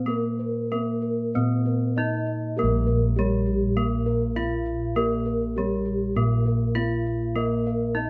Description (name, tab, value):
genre	Javanese gamelan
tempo	100 BPM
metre	4/4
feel	straight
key	Bb pelog barang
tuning	A4 = 439 Hz
part	gamelan-type bronze metallophone	melody	0.0-8.1 s	G3+20c to F4-40c	-29 LUFS	equal	none
part	gamelan-type bronze metallophone	arpeggios	0.0-8.1 s	G4+20c to F5-40c	-34 LUFS	equal	none
part	gamelan-type bossed gongs	bass	0.0-8.1 s	Bb1 to Bb4	-28 LUFS	equal	none
part	gamelan-type bossed gongs	arpeggios	0.1-8.1 s	G4+20c to F5-40c	-37 LUFS	equal	none
room	moderate stone room reverb, RT60 1.0 s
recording	band playing live in one room, nothing above 7.8 kHz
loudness	-25 LUFS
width	mono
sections	0.0-2.6 A section; 2.6-8.1 B section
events	none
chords	none